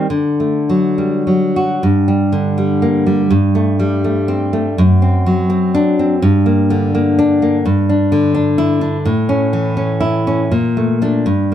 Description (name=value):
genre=romantic piece for solo classical guitar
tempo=67-86 BPM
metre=2/4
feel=rubato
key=G minor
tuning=A4 = 442 Hz
part: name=nylon-string guitar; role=solo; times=0.0-11.5 s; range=F#2 to F#4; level=-12 LUFS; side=equal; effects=none
room=light reverb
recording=close, detailed microphones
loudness=-12 LUFS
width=side -10 dB against mid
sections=0.0-1.8 A section; 1.8-11.5 B section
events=none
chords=0.1 D; 1.8 Gm; 3.3 Gsus24; 4.8 D7/F#; 6.2 Gm; 7.7 Em7/G; 9.1 A; 10.5 Bbmaj7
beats=| 0.08 0.96 | 1.81 2.56 | 3.31 4.04 | 4.78 5.51 | 6.24 6.96 | 7.66 8.36 | 9.07 9.78 | 10.52 11.28